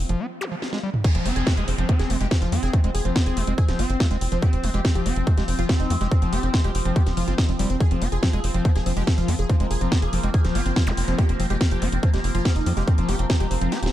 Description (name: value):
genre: psychedelic trance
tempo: 142 BPM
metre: 4/4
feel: straight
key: F minor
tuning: A4 = 437 Hz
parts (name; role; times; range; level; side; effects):
- overtone-sweeping drone; sustained chords; 0.0-13.9 s; F3 to F4; -32 LUFS; left 1 dB; chorus, built-in reverb, sidechain pumping
- tight sequencer bass; bass; 0.0-13.9 s; Eb1 to F2; -24 LUFS; equal; none
- overdriven acid bass; riff; 0.1-13.8 s; F3 to G4; -29 LUFS; left 1 dB; auto-pan, sidechain pumping, dub echo
- garage drum kit; drums; 0.1-13.9 s; crash cymbal, hi-hat, snare drum, toms; -29 LUFS; equal; none
- zap and downlifter; sound effects; 0.4-4.4, 10.9-11.0 s; none; -34 LUFS; equal; none
- supersaw stab; melody; 1.0-13.9 s; C4 to Ab4; -31 LUFS; right 1 dB; phaser, cassette tape, sidechain pumping, dub echo
- electronic kick drum; drums; 1.0-13.4 s; none; -20 LUFS; equal; none
room: little or no reverb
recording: dark, warm production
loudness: -20 LUFS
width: side -13 dB against mid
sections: 0.0-1.0 A section; 1.0-13.9 B section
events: break 0.2-1.0; drum fill 0.6-1.0, 13.7; drop 1.0-13.9; kick drops out 13.7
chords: 0.0 F5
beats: 0.20 0.62 | 1.04 1.47 1.89 2.31 | 2.73 3.16 3.58 4.00 | 4.42 4.85 5.27 5.69 | 6.12 6.54 6.96 7.38 | 7.80 8.23 8.65 9.07 | 9.49 9.92 10.34 10.76 | 11.19 11.61 12.03 12.45 | 12.88 13.30 13.72